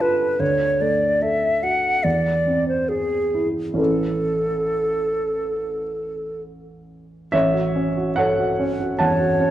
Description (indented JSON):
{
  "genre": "classical, impressionist duo for flute and grand piano",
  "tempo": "66-76 BPM",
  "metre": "4/4",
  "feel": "rubato",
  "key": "A major",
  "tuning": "A4 = 439 Hz",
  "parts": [
    { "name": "hollow concert flute", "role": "melody", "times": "0.0-9.5 s", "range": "G#4 to F#5", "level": "-21 LUFS", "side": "equal", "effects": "none" },
    { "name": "warm baby grand piano", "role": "accompaniment", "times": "0.0-9.5 s", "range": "A1 to A5", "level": "-22 LUFS", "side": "right 1 dB", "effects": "none" }
  ],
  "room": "wet recital hall reverb, RT60 1.7 s",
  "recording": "none",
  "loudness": "-19 LUFS",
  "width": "side -12 dB against mid",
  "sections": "0.0-7.3 A section; 7.3-9.5 B section",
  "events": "none",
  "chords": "0.4 D; 2.0 Eaug; 3.8 Aadd9; 7.3 A6"
}